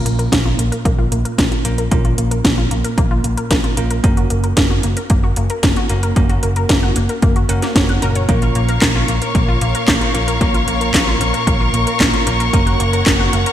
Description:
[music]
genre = italo disco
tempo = 113 BPM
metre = 4/4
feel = straight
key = Bb minor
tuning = A4 = 440 Hz
[part]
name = analog pluck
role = arpeggios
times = 0.0-13.5 s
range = Bb3 to Gb5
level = -22 LUFS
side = left 2 dB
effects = chorus, digital delay
[part]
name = bell-like tine electric piano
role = stabs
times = 0.0-13.5 s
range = Bb2 to Bb4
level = -23 LUFS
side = right 2 dB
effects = medium stereo tremolo, digital delay
[part]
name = picked electric bass with an envelope filter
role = bass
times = 0.1-13.4 s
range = Gb1 to Bb1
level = -19 LUFS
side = equal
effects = none
[part]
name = house drum kit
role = drums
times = 0.1-13.5 s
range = handclaps, hi-hat, snare drum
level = -19 LUFS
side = equal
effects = overdrive, gated reverb
[part]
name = electronic kick drum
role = drums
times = 0.3-13.2 s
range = none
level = -18 LUFS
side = equal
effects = overdrive
[part]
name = clear studio string section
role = sustained chords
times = 8.3-13.5 s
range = Bb4 to Db6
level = -20 LUFS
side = left 2 dB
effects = none
[sound]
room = moderate lush hall reverb, RT60 2.0 s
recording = bright 1980s-style digital production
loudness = -13 LUFS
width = side -11 dB against mid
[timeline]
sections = 0.0-13.5 A section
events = none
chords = 0.0 Bbm; 4.0 Gb; 8.3 Bbm; 12.5 Gb

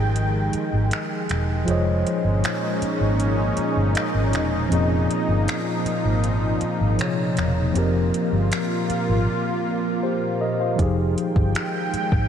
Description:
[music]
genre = contemporary R&B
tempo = 79 BPM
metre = 4/4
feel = straight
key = unclear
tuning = A4 = 441 Hz
[part]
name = mellow tine electric piano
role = accompaniment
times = 0.0-12.3 s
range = C3 to F5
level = -25 LUFS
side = left 1 dB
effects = medium stereo tremolo
[part]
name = lush unison pad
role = sustained chords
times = 0.0-12.3 s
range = Bb2 to G5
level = -25 LUFS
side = equal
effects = chorus
[part]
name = vintage muted fingered electric bass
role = bass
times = 0.0-12.3 s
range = E1 to Ab1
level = -22 LUFS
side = equal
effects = none
[part]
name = smooth R&B drum kit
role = drums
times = 0.2-12.3 s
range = finger snaps, hi-hat, kick drum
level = -30 LUFS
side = equal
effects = overdrive, vintage 12-bit sampler grit
[sound]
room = moderate huge ambient reverb, RT60 8.6 s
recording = dreamy mix soaked in reverb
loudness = -20 LUFS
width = side -8 dB against mid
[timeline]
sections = 0.0-12.3 A section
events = break 0.0-10.8; drums muted 9.3-10.8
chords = 0.0 Fm9; 1.7 Bbm11/F; 7.8 C7sus4/F; 10.8 Fm9

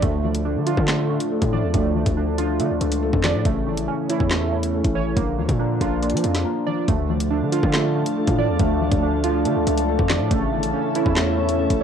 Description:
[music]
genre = hip hop, drill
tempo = 140 BPM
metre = 4/4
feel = half-time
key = D harmonic minor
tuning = A4 = 440 Hz
[part]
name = felt-muted upright piano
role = accompaniment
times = 0.0-11.8 s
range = C#3 to D5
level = -25 LUFS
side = left 11 dB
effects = cassette tape
[part]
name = warbly lo-fi synth keys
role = arpeggios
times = 0.0-11.8 s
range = A3 to D5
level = -24 LUFS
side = right 11 dB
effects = chorus, cassette tape, tape echo
[part]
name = hard-hitting 808-style bass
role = bass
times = 0.0-11.8 s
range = G1 to F3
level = -24 LUFS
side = equal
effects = none
[part]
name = drill drum kit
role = drums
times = 0.0-11.8 s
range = handclaps, hi-hat, kick drum, snare drum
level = -24 LUFS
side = equal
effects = overdrive, cassette tape
[part]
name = glassy FM pad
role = sustained chords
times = 7.3-11.8 s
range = C#4 to A5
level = -27 LUFS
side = equal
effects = ensemble chorus, built-in reverb, cassette tape
[sound]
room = digital ambience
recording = home recording on cassette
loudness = -19 LUFS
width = side -8 dB against mid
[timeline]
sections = 0.0-6.9 A section; 6.9-11.8 B section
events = break 6.5-6.9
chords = 0.0 Dm; 3.5 A; 5.2 Bb; 6.9 Dm; 10.3 A

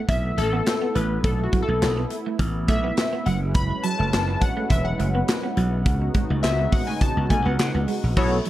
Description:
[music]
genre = early-eighties boogie funk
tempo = 104 BPM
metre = 4/4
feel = straight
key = unclear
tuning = A4 = 436 Hz
[part]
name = warm analog pad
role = sustained chords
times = 0.0-8.5 s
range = C#3 to B4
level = -30 LUFS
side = right 2 dB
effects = chorus
[part]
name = semi-hollow electric guitar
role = riff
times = 0.0-8.5 s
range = F#3 to B3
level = -30 LUFS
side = right 4 dB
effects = analog chorus
[part]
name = funky polysynth comp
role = accompaniment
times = 0.1-8.4 s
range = B3 to B5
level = -27 LUFS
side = left 2 dB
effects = chorus
[part]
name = slap bass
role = bass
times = 0.1-8.4 s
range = E1 to C#3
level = -24 LUFS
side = equal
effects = none
[part]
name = modern studio drum kit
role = drums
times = 0.1-8.5 s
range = crash cymbal, handclaps, hi-hat, kick drum, snare drum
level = -24 LUFS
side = equal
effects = none
[sound]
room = small room ambience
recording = dark, warm production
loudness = -20 LUFS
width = side -14 dB against mid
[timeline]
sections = 0.0-8.2 A section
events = analog polysynth solo 0.0-8.2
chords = 0.0 B7sus4; 3.3 F#9sus4; 5.9 C#9sus4

